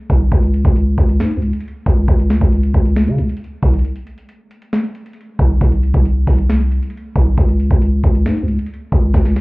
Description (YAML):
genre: hip hop, trap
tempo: 136 BPM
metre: 4/4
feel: half-time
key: unclear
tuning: A4 = 438 Hz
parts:
  - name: growling 808-style bass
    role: bass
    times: 0.1-9.4 s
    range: C2 to Db3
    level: -15 LUFS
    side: equal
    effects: none
  - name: trap drum kit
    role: drums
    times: 0.1-9.4 s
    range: hi-hat, kick drum, snare drum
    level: -15 LUFS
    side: equal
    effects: vintage 12-bit sampler grit
room: digital ambience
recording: heard muffled through a wall, club reverb, EQ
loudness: -13 LUFS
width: side -24 dB against mid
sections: 0.0-9.4 A section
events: break 3.8-4.7; drum fill 9.1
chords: none